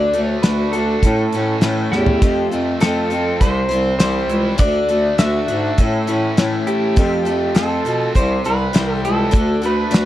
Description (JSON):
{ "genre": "folk rock and heartland rock", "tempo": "101 BPM", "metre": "4/4", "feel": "straight", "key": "unclear", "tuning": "A4 = 440 Hz", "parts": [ { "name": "electric guitar through a small old amp", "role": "melody", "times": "0.0-10.1 s", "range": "G4 to E5", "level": "-20 LUFS", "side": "right 1 dB", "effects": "spring reverb" }, { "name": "picked steel-string acoustic guitar", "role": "accompaniment", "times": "0.0-10.1 s", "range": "A2 to C5", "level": "-23 LUFS", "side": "left 5 dB", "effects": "none" }, { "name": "raw garage guitar", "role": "riff", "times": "0.0-10.1 s", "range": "F2 to F#4", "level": "-25 LUFS", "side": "right 2 dB", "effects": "overdrive" }, { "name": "warm bass clarinet", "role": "bass", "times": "0.0-10.1 s", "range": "C2 to B2", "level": "-21 LUFS", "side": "equal", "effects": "none" }, { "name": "damped 70s drum kit", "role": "drums", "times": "0.1-10.1 s", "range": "hi-hat, kick drum, snare drum, toms", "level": "-15 LUFS", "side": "equal", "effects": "none" } ], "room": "little or no reverb", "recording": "dry, close 1970s-style studio recording", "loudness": "-15 LUFS", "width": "side -13 dB against mid", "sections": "0.0-10.1 A section", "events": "drum fill 1.9", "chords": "0.0 D; 1.0 A; 2.2 F; 3.4 C; 4.6 D; 5.8 A; 7.0 F; 8.2 C; 9.3 D", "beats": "0.44 1.03 1.63 | 2.22 2.82 3.41 4.01 | 4.60 5.19 5.79 6.38 | 6.97 7.56 8.15 8.75 | 9.34 9.93" }